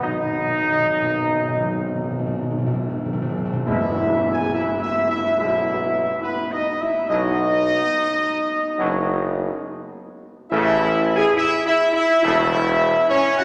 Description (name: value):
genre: classical, ceremonial fanfare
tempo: 64-71 BPM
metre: 4/4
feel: straight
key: E major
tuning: A4 = 438 Hz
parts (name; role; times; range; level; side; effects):
- warm trumpet section; melody; 0.0-13.4 s; B4 to G#5; -26 LUFS; equal; none
- clear trombone section; sustained chords; 0.0-12.6 s; B2 to D#4; -27 LUFS; equal; none
- mellow French horn section; sustained chords; 0.0-13.4 s; B3 to G#4; -25 LUFS; equal; none
- clear tuba; bass; 0.0-12.9 s; E1 to E2; -29 LUFS; equal; none
- timpani; percussion; 0.0-4.9 s; E2 to B2; -28 LUFS; equal; none
- tam-tam; percussion; 3.7-7.1 s; none; -32 LUFS; equal; none
room: wet scoring stage reverb, RT60 2.1 s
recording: none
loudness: -21 LUFS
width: mono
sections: 0.0-3.7 A section; 3.7-13.4 B section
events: timpani fill 0.0-3.7; band accent 3.7-4.5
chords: 0.0 B; 3.7 E; 7.1 B; 10.5 A